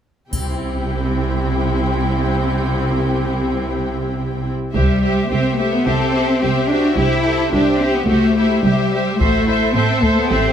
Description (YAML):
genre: cinematic, epic orchestral film score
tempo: 108 BPM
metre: 4/4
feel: straight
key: unclear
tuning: A4 = 440 Hz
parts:
  - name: warm symphonic violin section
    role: second line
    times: 0.3-10.5 s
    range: G4 to G5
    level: -25 LUFS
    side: left 3 dB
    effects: none
  - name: clear symphonic viola section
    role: accompaniment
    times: 0.3-10.5 s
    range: C4 to C5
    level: -22 LUFS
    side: equal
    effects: none
  - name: clear studio double bass section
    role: bass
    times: 0.3-10.5 s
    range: A1 to C2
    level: -22 LUFS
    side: right 2 dB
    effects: none
  - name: rich symphonic cello section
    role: bass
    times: 0.3-10.5 s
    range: C3 to E4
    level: -19 LUFS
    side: equal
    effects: none
  - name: taiko ensemble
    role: drums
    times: 0.3-1.4, 4.8-5.8, 9.2-10.3 s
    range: none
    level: -22 LUFS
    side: equal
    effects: none
  - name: triangle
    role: percussion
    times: 0.3-1.4 s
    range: none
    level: -33 LUFS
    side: equal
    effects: none
  - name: rich studio violin section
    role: melody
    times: 5.9-10.5 s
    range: E4 to A4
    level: -25 LUFS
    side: left 4 dB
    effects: none
room: moderate scoring stage reverb, RT60 1.5 s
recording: none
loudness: -15 LUFS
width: side -8 dB against mid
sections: 0.3-4.8 A section; 4.8-10.5 B section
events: none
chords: 0.3 C; 9.2 Am